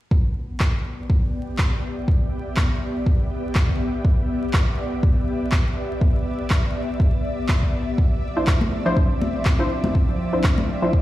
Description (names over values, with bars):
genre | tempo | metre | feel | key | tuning
deep house | 122 BPM | 4/4 | swing 56% on 16ths | unclear | A4 = 440 Hz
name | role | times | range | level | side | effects
electronic kick drum | drums | 0.1-11.0 s | none | -19 LUFS | equal | none
ethereal airy pad | texture | 0.5-11.0 s | F3 to E5 | -28 LUFS | left 1 dB | ensemble chorus, built-in reverb, sidechain pumping
electronic handclaps | drums | 0.6-10.5 s | none | -28 LUFS | equal | none
airy breathy pad | sustained chords | 8.2-11.0 s | F3 to E5 | -30 LUFS | equal | chorus, sidechain pumping
filtered dub chord stab | stabs | 8.4-10.9 s | F3 to C5 | -24 LUFS | equal | chorus, sidechain pumping, ping-pong delay
congas | percussion | 8.6-10.7 s | none | -26 LUFS | left 1 dB | sidechain pumping on perc
room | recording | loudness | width
light reverb, digital ambience | played on a big sound system in a bare room, large studio reverb, vinyl crackle | -19 LUFS | side -15 dB against mid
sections
0.1-11.0 A section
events
none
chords
0.1 Em7; 8.0 Dm9